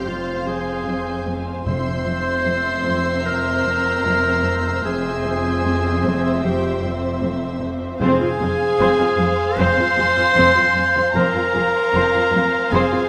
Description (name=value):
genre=cinematic, suspense film score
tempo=76 BPM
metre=4/4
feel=straight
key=F harmonic minor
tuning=A4 = 440 Hz
part: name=muted symphonic violin section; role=melody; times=0.0-13.1 s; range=F5 to C6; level=-31 LUFS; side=equal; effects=none
part: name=mellow clarinet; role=second line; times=0.0-13.1 s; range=F4 to C5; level=-22 LUFS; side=equal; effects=none
part: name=muted studio violin section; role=second line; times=0.0-13.1 s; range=C5 to F5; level=-31 LUFS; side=equal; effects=none
part: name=muted symphonic viola section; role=accompaniment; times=0.0-13.0 s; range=C4 to C5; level=-28 LUFS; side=equal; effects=none
part: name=muted symphonic cello section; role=bass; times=0.0-13.0 s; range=F2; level=-29 LUFS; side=equal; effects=none
part: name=muted symphonic double bass section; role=bass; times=0.0-12.8 s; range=F1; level=-31 LUFS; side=equal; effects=none
part: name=muted symphonic violin section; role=texture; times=0.0-13.1 s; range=Ab5 to C7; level=-36 LUFS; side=equal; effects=none
part: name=muted symphonic cello section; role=riff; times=0.1-13.0 s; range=F2 to F3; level=-30 LUFS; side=equal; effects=none
part: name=timpani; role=percussion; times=1.7-2.8, 8.0-9.2 s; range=F2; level=-32 LUFS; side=equal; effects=none
room=wet scoring stage reverb, RT60 1.8 s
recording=none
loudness=-19 LUFS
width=mono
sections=0.0-13.1 A section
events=none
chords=0.0 Fm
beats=0.07 0.86 | 1.67 2.46 3.25 4.05 | 4.85 5.65 6.44 7.23 | 8.01 8.80 9.59 10.37 | 11.16 11.95 12.73